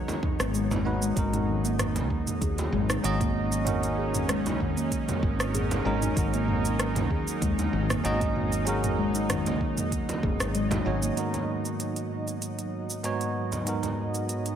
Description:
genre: organic downtempo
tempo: 96 BPM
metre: 4/4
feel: swing 54% on 16ths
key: G# minor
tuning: A4 = 436 Hz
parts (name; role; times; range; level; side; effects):
- bell-like tine electric piano; accompaniment; 0.0-14.6 s; G#2 to D#5; -32 LUFS; right 3 dB; medium stereo tremolo, sidechain pumping, tape echo, shimmer reverb
- bowed-like drone; sustained chords; 0.0-14.6 s; F#3 to D#5; -34 LUFS; right 2 dB; built-in reverb, sidechain pumping, shimmer reverb
- organic electronic drum kit; drums; 0.1-14.6 s; cabasa, hi-hat, rim click, toms; -32 LUFS; right 1 dB; overdrive
- frame drum; percussion; 0.1-13.9 s; none; -36 LUFS; right 2 dB; none
- steel tongue drum; arpeggios; 0.2-11.2 s; D#3 to G#4; -30 LUFS; left 2 dB; tape echo, shimmer reverb
- electronic kick drum; drums; 0.2-10.4 s; none; -30 LUFS; equal; none
- woody fretless electric bass; bass; 0.4-11.1 s; F#1 to D#2; -31 LUFS; equal; sidechain pumping
room: moderate echo chamber reverb, RT60 1.9 s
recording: none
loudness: -25 LUFS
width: side -9 dB against mid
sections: 0.0-11.2 A section; 11.2-14.6 B section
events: filter sweep on synth drone 11.2-14.6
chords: 0.0 G#m7; 1.2 D#m7/G#; 11.2 G#m7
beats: 0.54 | 1.17 1.79 2.42 3.04 | 3.67 4.29 4.92 5.54 | 6.17 6.79 7.42 8.04 | 8.67 9.29 9.92 10.54 | 11.17 11.79 12.42 13.04 | 13.67 14.29

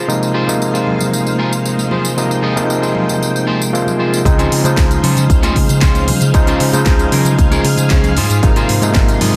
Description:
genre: nu-disco, nu disco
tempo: 115 BPM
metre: 4/4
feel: straight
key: unclear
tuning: A4 = 438 Hz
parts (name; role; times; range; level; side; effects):
- string machine, full ensemble; sustained chords; 0.0-9.4 s; Ab3 to C6; -26 LUFS; equal; ensemble chorus, sidechain pumping
- electric guitar at the edge of break-up; riff; 0.0-9.4 s; Db4 to Eb5; -24 LUFS; equal; lush chorus, digital delay
- overdriven tine electric piano; accompaniment; 0.1-9.4 s; C3 to C5; -19 LUFS; equal; digital delay
- house drum kit; drums; 0.1-9.3 s; hi-hat, snare drum, tambourine; -24 LUFS; equal; none
- congas; percussion; 0.5-9.4 s; none; -27 LUFS; equal; none
- picked electric bass; bass; 4.3-9.3 s; Ab1 to Db3; -18 LUFS; equal; tube saturation
- electronic kick drum; drums; 4.3-9.1 s; none; -16 LUFS; equal; none
room: light reverb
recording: dense, heavily limited modern master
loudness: -14 LUFS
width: mono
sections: 0.0-4.3 A section; 4.3-9.4 B section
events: drop 4.3-9.4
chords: 0.0 Ab6; 4.3 Dbmaj7; 8.2 Ab6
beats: | 0.08 0.60 1.13 1.65 | 2.17 2.69 3.21 3.73 | 4.26 4.78 5.30 5.82 | 6.34 6.87 7.39 7.91 | 8.43 8.95

